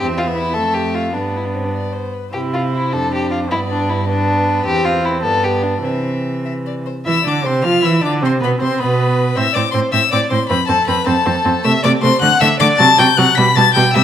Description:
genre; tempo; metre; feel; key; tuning
quick classical-period movement for string quartet; 104 BPM (dotted quarters); 6/8; rubato; C major; A4 = 441 Hz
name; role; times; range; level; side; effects
rich violin; melody; 0.0-14.0 s; B4 to B6; -19 LUFS; left 8 dB; none
warm violin; second line; 0.0-14.0 s; C4 to B5; -18 LUFS; left 2 dB; none
warm viola; accompaniment; 0.0-14.0 s; E3 to F4; -20 LUFS; right 2 dB; none
rich cello; bass; 0.0-14.0 s; E2 to F3; -19 LUFS; right 3 dB; none
room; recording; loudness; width
wet recital hall reverb, RT60 1.5 s; none; -13 LUFS; side -9 dB against mid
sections
0.0-7.1 A section; 7.1-14.0 B section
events
none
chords
0.0 C/E; 0.6 Fmaj9; 1.1 G; 2.3 C; 2.9 Dm/F; 3.5 G; 4.7 C/E; 5.2 G; 5.8 C; 7.1 Dm9; 8.2 N.C.; 9.4 Am; 10.5 F; 11.6 Am/C; 12.2 D5; 12.8 F#dim/C; 13.4 G/B

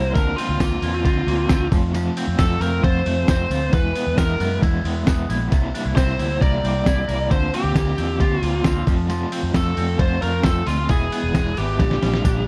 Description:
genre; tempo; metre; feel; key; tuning
jangly indie pop; 134 BPM; 4/4; straight; unclear; A4 = 440 Hz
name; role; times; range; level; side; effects
biting lead guitar; melody; 0.0-12.4 s; F4 to D5; -27 LUFS; equal; overdrive, slapback echo
crunchy overdriven guitar; accompaniment; 0.0-12.5 s; Bb2 to F4; -28 LUFS; equal; tremolo
electric guitar with an envelope filter; arpeggios; 0.0-12.5 s; Bb2 to Bb4; -33 LUFS; equal; lush chorus, slapback echo
vintage muted fingered electric bass; bass; 0.0-12.4 s; E1 to F#2; -26 LUFS; equal; none
lo-fi sampler-style drum kit; drums; 0.2-12.4 s; hi-hat, kick drum, ride cymbal, snare drum; -24 LUFS; equal; none
tambourine; percussion; 0.2-12.4 s; none; -48 LUFS; equal; none
room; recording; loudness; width
little or no reverb; dark, warm production, vinyl crackle; -20 LUFS; mono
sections
0.0-12.5 A section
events
drum fill 11.8-12.5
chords
0.2 Bbadd9/D; 1.7 F; 3.7 E; 5.5 C7; 7.3 Bbadd9/D; 8.9 F; 10.9 E; 11.8 Bb6

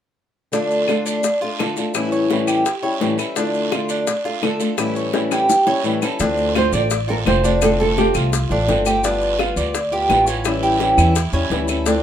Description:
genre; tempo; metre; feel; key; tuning
latin, Cuban son and guajira; 169 BPM; 4/4; straight; D harmonic minor, D minor from 6.2 s; A4 = 440 Hz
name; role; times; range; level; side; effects
fingerpicked old ladder-braced acoustic guitar; accompaniment; 0.5-12.0 s; A2 to F4; -21 LUFS; left 2 dB; none
Cuban tres; arpeggios; 0.5-12.0 s; C#4 to D5; -21 LUFS; right 1 dB; none
bongos; percussion; 0.5-12.0 s; none; -26 LUFS; left 5 dB; none
guiro; percussion; 0.5-12.0 s; none; -30 LUFS; right 8 dB; none
maracas; percussion; 0.5-12.0 s; none; -31 LUFS; left 8 dB; none
claves; percussion; 0.9-11.9 s; none; -30 LUFS; left 6 dB; none
upright bass; bass; 6.2-12.0 s; F1 to E2; -22 LUFS; right 1 dB; none
nylon-string guitar; melody; 6.6-8.5 s; F4 to D5; -20 LUFS; right 3 dB; none
room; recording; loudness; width
light reverb; minimal, uncompressed stereo recording; -16 LUFS; side -10 dB against mid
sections
0.5-6.2 A section; 6.2-12.0 B section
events
drum fill 5.1-6.2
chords
0.5 Dm; 1.9 A7; 3.4 Dm; 4.8 A7; 6.2 Dm7; 7.6 F6; 9.0 G7; 10.4 A7

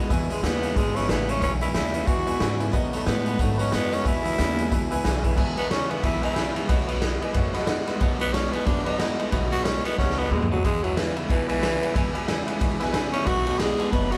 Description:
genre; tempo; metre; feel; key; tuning
rockabilly; 182 BPM; 4/4; swing 59% on 8ths; E major; A4 = 440 Hz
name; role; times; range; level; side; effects
honky-tonk upright piano; accompaniment; 0.0-14.2 s; B4 to B5; -36 LUFS; equal; none
picked steel-string acoustic guitar; accompaniment; 0.0-14.2 s; E2 to F#4; -37 LUFS; equal; none
electric guitar at the edge of break-up; riff; 0.0-14.2 s; E2 to G#3; -33 LUFS; equal; phaser
upright bass; bass; 0.0-14.2 s; F#1 to B2; -32 LUFS; equal; none
raw garage drum kit; drums; 0.1-14.2 s; crash cymbal, hi-hat, kick drum, ride cymbal, snare drum, toms; -28 LUFS; equal; none
breathy tenor saxophone; melody; 0.3-14.2 s; E3 to B4; -30 LUFS; equal; none
room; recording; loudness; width
moderate stone room reverb, RT60 1.4 s; band playing live in one room; -24 LUFS; mono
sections
0.0-5.4 A section; 5.4-14.2 B section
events
tenor saxophone solo 5.4-14.2; drum fill 10.0-10.6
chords
0.1 E; 2.7 B7; 4.1 E; 6.7 B7; 10.6 E; 13.3 B7

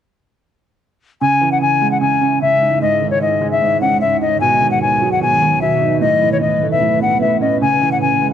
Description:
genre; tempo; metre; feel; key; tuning
hip hop; 150 BPM; 4/4; half-time; C# minor; A4 = 440 Hz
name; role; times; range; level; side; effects
reedy concert flute; melody; 1.2-8.3 s; C#5 to G#5; -14 LUFS; left 4 dB; cassette tape, tape echo
dark concert grand piano; accompaniment; 1.2-8.3 s; G#2 to D#4; -19 LUFS; right 7 dB; cassette tape
granular cloud pad; sustained chords; 2.1-8.3 s; G#2 to E5; -22 LUFS; right 1 dB; built-in reverb, cassette tape
room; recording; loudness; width
light reverb, studio reverb; home recording on cassette; -13 LUFS; side -9 dB against mid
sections
1.2-8.3 A section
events
none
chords
1.2 C#madd9; 2.8 G#sus4; 4.4 B; 6.0 Aadd9; 7.6 C#m

